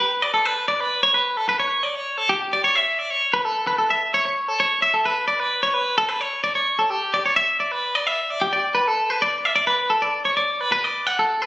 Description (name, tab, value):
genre	rock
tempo	130 BPM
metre	5/4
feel	straight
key	G lydian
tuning	A4 = 439 Hz
part	twangy electric guitar	solo	0.0-11.5 s	G4 to F#5	-18 LUFS	equal	spring reverb
room	light reverb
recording	recorded on a phone in the room, studio reverb, compression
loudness	-18 LUFS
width	side -18 dB against mid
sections	0.0-7.4 A section; 7.4-11.5 B section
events	none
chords	none